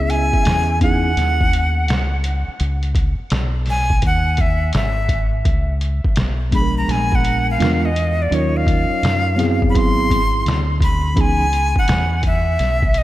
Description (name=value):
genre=hip hop, jazz-hop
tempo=84 BPM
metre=4/4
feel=swing 65% on 16ths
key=C# minor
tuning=A4 = 440 Hz
part: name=breathy bright jazz flute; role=melody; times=0.0-13.0 s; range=C#5 to B#5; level=-21 LUFS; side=equal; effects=analog delay
part: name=mellow tine electric piano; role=accompaniment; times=0.0-1.1, 6.5-11.5 s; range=E3 to A#4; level=-22 LUFS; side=right 1 dB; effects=medium stereo tremolo
part: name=deep dub fingered electric bass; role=bass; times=0.0-13.0 s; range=G#1 to F#2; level=-20 LUFS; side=equal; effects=none
part: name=trip hop sampler-style drum kit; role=drums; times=0.1-13.0 s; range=hi-hat, kick drum, snare drum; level=-20 LUFS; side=equal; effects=none
room=light reverb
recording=none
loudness=-15 LUFS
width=side -15 dB against mid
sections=0.0-5.5 A section; 5.5-13.0 B section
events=flute solo 5.5-13.0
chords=0.0 C#m9; 5.5 C#5; 6.9 A#7b9; 8.3 D#m9; 9.7 G#7alt; 11.2 C#m9